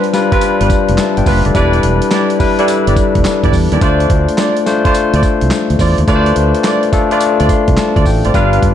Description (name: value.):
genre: R&B, new jack swing.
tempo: 106 BPM.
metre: 4/4.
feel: swing 66% on 16ths.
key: D dorian.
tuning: A4 = 435 Hz.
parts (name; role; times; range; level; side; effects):
barky tine electric piano; accompaniment; 0.0-8.7 s; G3 to C6; -13 LUFS; left 4 dB; overdrive.
warm horn section; stabs; 0.0-8.6 s; E4 to F5; -20 LUFS; right 4 dB; ping-pong delay.
dusty soul sampler-style drum kit; drums; 0.0-8.7 s; handclaps, hi-hat, kick drum, snare drum, tambourine; -16 LUFS; right 1 dB; none.
fingered electric bass; bass; 0.6-8.7 s; E1 to E2; -14 LUFS; right 1 dB; none.
room: light reverb, digital ambience.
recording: dark, warm production.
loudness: -10 LUFS.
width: side -10 dB against mid.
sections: 0.0-8.7 A section.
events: tine electric piano fill 7.2-8.3.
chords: 0.0 G7; 1.5 Em7; 3.8 Dm7.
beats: 0.42 0.98 | 1.55 2.11 2.68 3.25 | 3.81 4.38 4.95 5.51 | 6.08 6.64 7.21 7.78 | 8.34.